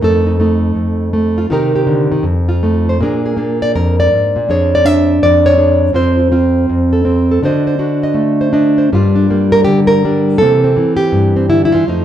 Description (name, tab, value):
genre	solo jazz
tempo	164 BPM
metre	4/4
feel	swing 64% on 8ths, rubato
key	F mixolydian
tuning	A4 = 440 Hz
part	nylon-string guitar	solo	0.0-12.0 s	F2 to E5	-10 LUFS	equal	none
room	wet large studio reverb, RT60 0.8 s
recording	band playing live in one room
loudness	-10 LUFS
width	side -10 dB against mid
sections	0.0-12.0 A section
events	none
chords	0.0 F7; 1.5 Cm7; 2.2 F7; 3.0 Bb7; 4.5 E13b9/F; 5.9 F; 7.4 D7b9; 8.9 Gm7; 10.4 C7